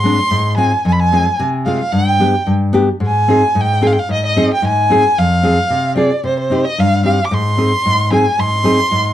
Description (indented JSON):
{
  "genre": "klezmer",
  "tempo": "112 BPM",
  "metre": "2/4",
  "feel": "straight",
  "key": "unclear",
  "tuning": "A4 = 443 Hz",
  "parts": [
    { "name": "warm violin", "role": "melody", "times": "0.0-9.1 s", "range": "C5 to D6", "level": "-15 LUFS", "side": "right 1 dB", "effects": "none" },
    { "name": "nylon-string guitar", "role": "accompaniment", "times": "0.0-9.1 s", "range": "F2 to Ab4", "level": "-14 LUFS", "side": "left 1 dB", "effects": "none" }
  ],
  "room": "moderate studio reverb, RT60 0.5 s",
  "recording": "dark, warm production",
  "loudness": "-12 LUFS",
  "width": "side -12 dB against mid",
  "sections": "0.0-3.0 A section; 3.0-9.1 A section",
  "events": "none",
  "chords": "0.0 Ab; 0.9 Fm; 1.9 G; 3.0 Ab; 5.2 Fm; 6.2 Cm; 7.3 Ab"
}